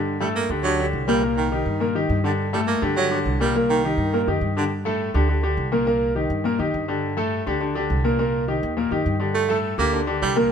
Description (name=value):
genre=latin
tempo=207 BPM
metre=4/4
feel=straight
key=G minor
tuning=A4 = 440 Hz
part: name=clear concert grand piano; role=accompaniment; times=0.0-10.5 s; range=A2 to Bb4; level=-22 LUFS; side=left 2 dB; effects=none
part: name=upright bass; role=bass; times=0.0-10.5 s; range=C2 to G2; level=-26 LUFS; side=equal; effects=none
part: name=breathy baritone saxophone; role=second line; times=0.2-4.6, 9.3-10.4 s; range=D3 to Bb3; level=-25 LUFS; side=right 5 dB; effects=none
room=light reverb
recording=minimal, uncompressed stereo recording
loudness=-20 LUFS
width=side -7 dB against mid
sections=0.0-4.7 A section; 4.7-10.5 A section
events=none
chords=0.1 Gmadd9; 1.2 Cm7; 2.4 Gmadd9; 3.5 Cm7; 4.7 Gmadd9; 5.9 Cm7; 7.0 Gmadd9; 8.2 Cm7; 9.4 Gmadd9